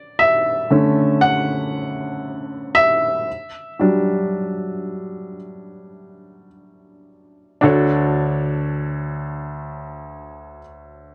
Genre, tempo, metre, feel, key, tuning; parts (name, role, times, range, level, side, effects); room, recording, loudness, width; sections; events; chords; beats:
pop; 52-60 BPM; 4/4; straight; D major; A4 = 440 Hz
clear baby grand piano; accompaniment; 0.0-11.1 s; D2 to F#5; -20 LUFS; equal
light reverb; dry, close 1970s-style studio recording; -19 LUFS; mono
0.0-7.6 A section; 7.6-11.1 B section
slowing down 0.0-7.6; grand piano solo 0.0-7.6
0.0 Dmaj9; 3.3 Em7; 7.6 Dmaj7
0.20 1.21 2.23 | 3.27 4.32 5.40 6.50 | 7.63 8.78 9.92 11.07